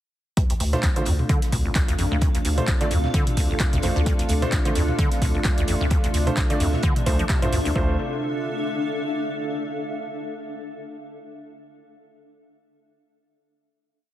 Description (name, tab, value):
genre	acid house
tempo	130 BPM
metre	4/4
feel	swing 56% on 16ths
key	D minor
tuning	A4 = 440 Hz
part	lush unison pad	sustained chords	1.1-8.0 s	C3 to F4	-31 LUFS	equal	chorus, sidechain pumping
part	acid bass, square	riff	0.4-8.0 s	D1 to F3	-27 LUFS	equal	tube saturation, wide subtle chorus, sidechain pumping
part	booming analog drum machine	drums	0.4-7.7 s	handclaps, hi-hat, toms	-29 LUFS	equal	overdrive
part	electronic kick drum	drums	0.4-7.9 s	none	-22 LUFS	equal	overdrive
part	open jazz drum kit	drums	0.4-7.8 s	hi-hat, snare drum	-40 LUFS	right 3 dB	none
part	granular cloud pad	texture	1.2-9.6 s	D4 to F5	-30 LUFS	equal	built-in reverb, sidechain pumping
part	saturated sub bass	bass	0.6-8.0 s	A1 to D2	-24 LUFS	equal	sidechain pumping
part	dark grand piano	stabs	0.7-7.9 s	A3 to D5	-28 LUFS	right 2 dB	ping-pong delay
room	light reverb, digital ambience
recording	heavily compressed radio sound, multiband compression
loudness	-20 LUFS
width	side -13 dB against mid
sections	0.4-7.8 groove; 7.8-9.6 final chord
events	none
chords	0.4 Dm7